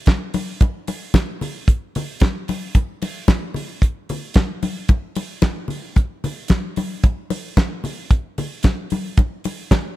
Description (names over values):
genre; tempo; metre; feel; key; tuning
disco; 112 BPM; 4/4; straight; none; none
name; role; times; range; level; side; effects
damped 70s drum kit; drums; 0.1-9.8 s; handclaps, hi-hat, kick drum, snare drum; -18 LUFS; equal; none
congas; percussion; 0.1-9.8 s; none; -25 LUFS; left 4 dB; none
room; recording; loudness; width
little or no reverb; none; -18 LUFS; side -15 dB against mid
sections
0.0-10.0 A section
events
none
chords
none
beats
0.07 | 0.61 1.14 1.68 2.21 | 2.75 3.29 3.82 4.36 | 4.89 5.43 5.96 6.50 | 7.03 7.57 8.10 8.64 | 9.18 9.71